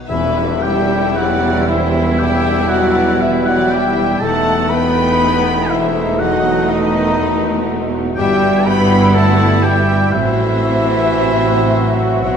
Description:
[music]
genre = classical, slow romantic movement for symphony orchestra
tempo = 59 BPM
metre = 4/4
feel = uneven beats, rubato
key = E minor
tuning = A4 = 441 Hz
[part]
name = rich symphonic violin section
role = second line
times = 0.0-12.4 s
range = D#5 to B5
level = -28 LUFS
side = left 1 dB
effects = none
[part]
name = concert harp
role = arpeggios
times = 0.0-12.4 s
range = E2 to C6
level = -27 LUFS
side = left 6 dB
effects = none
[part]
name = rich symphonic violin section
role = melody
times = 0.1-12.4 s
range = B4 to G5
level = -26 LUFS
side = left 3 dB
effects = none
[part]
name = mellow hollow concert flute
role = second line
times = 0.1-12.4 s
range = D#5 to B5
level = -22 LUFS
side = left 2 dB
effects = none
[part]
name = warm clarinet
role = second line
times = 0.1-12.4 s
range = D#4 to B4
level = -23 LUFS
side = equal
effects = none
[part]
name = warm oboe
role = second line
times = 0.1-12.4 s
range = D#5 to B5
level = -23 LUFS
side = right 1 dB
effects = none
[part]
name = rich symphonic viola section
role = accompaniment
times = 0.1-12.4 s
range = G3 to F#4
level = -23 LUFS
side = equal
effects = none
[part]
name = clear trombone section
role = sustained chords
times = 0.1-12.4 s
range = B2 to A3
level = -23 LUFS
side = right 4 dB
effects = none
[part]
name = dark French horn section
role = sustained chords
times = 0.1-12.4 s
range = D#3 to B3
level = -20 LUFS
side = left 2 dB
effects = none
[part]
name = clear trumpet section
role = stabs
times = 0.1-12.4 s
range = D#4 to F#4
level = -25 LUFS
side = right 1 dB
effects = none
[part]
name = clear symphonic cello section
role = bass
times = 0.1-12.4 s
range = E2 to B2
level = -20 LUFS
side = right 1 dB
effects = none
[part]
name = rich symphonic double bass section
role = bass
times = 0.1-12.4 s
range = E1 to B1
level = -21 LUFS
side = right 2 dB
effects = none
[part]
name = tam-tam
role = percussion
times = 0.1-4.2 s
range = none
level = -30 LUFS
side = left 1 dB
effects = none
[sound]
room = wet scoring stage reverb, RT60 1.7 s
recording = none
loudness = -12 LUFS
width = side -7 dB against mid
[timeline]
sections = 0.1-12.4 A section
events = band accent 0.1-1.2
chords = 0.1 Em; 4.2 B7/E; 8.2 Em/G; 10.1 F#dim/A

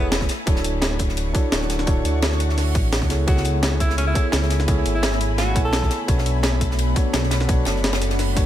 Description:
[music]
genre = liquid drum and bass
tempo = 171 BPM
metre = 4/4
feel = straight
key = unclear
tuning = A4 = 440 Hz
[part]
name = bright alto saxophone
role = melody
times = 0.0-0.1, 3.3-6.0 s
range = C#4 to A4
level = -29 LUFS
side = equal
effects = ping-pong delay
[part]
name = tine electric piano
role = accompaniment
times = 0.0-8.5 s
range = B3 to G#5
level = -27 LUFS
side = equal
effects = ping-pong delay
[part]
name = shimmering ambient pad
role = sustained chords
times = 0.0-8.5 s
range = A3 to C#6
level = -30 LUFS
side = left 1 dB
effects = chorus, built-in reverb, sidechain pumping
[part]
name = dark detuned saw bass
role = bass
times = 0.0-8.5 s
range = D1 to D2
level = -22 LUFS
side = equal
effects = none
[part]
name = breakbeat sampler-style drum kit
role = drums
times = 0.1-8.4 s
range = hi-hat, snare drum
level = -26 LUFS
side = equal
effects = none
[part]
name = tight funk drum kit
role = drums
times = 0.1-8.5 s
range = hi-hat, ride cymbal, snare drum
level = -30 LUFS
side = equal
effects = high-pass filter on cymbals, high-pass filter on hats, high-pass filter on snare, high-pass filter on room
[part]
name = electronic kick drum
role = drums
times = 0.2-8.4 s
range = none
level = -21 LUFS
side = equal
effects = overdrive
[sound]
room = studio ambience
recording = none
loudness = -18 LUFS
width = side -12 dB against mid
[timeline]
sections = 0.0-8.5 A section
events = none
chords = 0.3 Dmaj7; 3.1 Amaj9; 6.1 Bm7

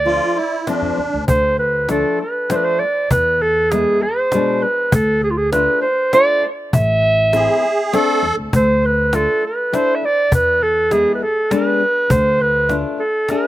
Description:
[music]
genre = klezmer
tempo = 100 BPM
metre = 3/4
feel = straight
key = D dorian sharp4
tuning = A4 = 435 Hz
[part]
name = warm clarinet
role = melody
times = 0.0-13.5 s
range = F4 to E5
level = -15 LUFS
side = right 1 dB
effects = slapback echo
[part]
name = upright bass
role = bass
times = 0.0-12.8 s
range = A1 to F2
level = -21 LUFS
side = left 1 dB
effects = none
[part]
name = musette accordion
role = second line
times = 0.1-1.2, 7.3-8.4 s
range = D4 to A4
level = -19 LUFS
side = right 1 dB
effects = slapback echo
[part]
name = nylon-string guitar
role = accompaniment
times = 0.1-13.5 s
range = B2 to G#4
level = -22 LUFS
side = left 5 dB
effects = slapback echo
[part]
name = cajon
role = drums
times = 0.1-13.4 s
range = none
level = -19 LUFS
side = left 1 dB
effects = none
[sound]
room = little or no reverb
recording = recorded outdoors, with no room sound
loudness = -14 LUFS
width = side -15 dB against mid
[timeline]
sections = 0.0-1.3 A section; 1.3-13.5 B section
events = speeding up 0.0-13.5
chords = 0.0 Dm; 3.1 E; 4.9 Dm; 6.7 Am; 8.5 Dm; 10.3 E; 12.1 Dm

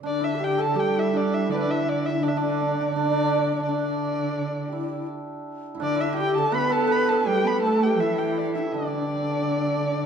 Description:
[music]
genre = chinese traditional, Chinese chamber ensemble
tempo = 83 BPM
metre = 4/4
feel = rubato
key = D zhi mode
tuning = A4 = 440 Hz
[part]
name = breathy mellow xiao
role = second line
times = 0.0-10.1 s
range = D4 to B4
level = -28 LUFS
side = left 7 dB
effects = none
[part]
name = hammered dulcimer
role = second line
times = 0.0-10.1 s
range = D4 to D5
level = -26 LUFS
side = right 4 dB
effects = none
[part]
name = warm cello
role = second line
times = 0.0-10.1 s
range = D3 to B3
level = -28 LUFS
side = right 4 dB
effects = none
[part]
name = dark erhu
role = melody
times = 0.1-10.1 s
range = B4 to B5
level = -28 LUFS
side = left 1 dB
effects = none
[sound]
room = wet recital hall reverb, RT60 1.4 s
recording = dark, warm production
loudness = -21 LUFS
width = side -7 dB against mid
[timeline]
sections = 0.0-10.1 A section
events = none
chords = none

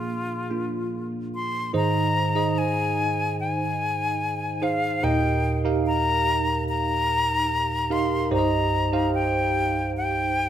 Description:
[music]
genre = pop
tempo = 73 BPM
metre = 4/4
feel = straight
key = unclear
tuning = A4 = 440 Hz
[part]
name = breathy bright concert flute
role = melody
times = 0.0-10.5 s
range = F4 to C6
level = -25 LUFS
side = left 3 dB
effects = none
[part]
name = bell-like tine electric piano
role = accompaniment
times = 0.0-10.5 s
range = C2 to F5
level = -24 LUFS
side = right 2 dB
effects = phaser
[sound]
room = light reverb, studio reverb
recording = none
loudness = -22 LUFS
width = side -10 dB against mid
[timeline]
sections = 0.0-1.7 A section; 1.7-10.5 B section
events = none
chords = 0.0 Bb; 1.7 Ab; 5.0 Eb; 8.3 Cm

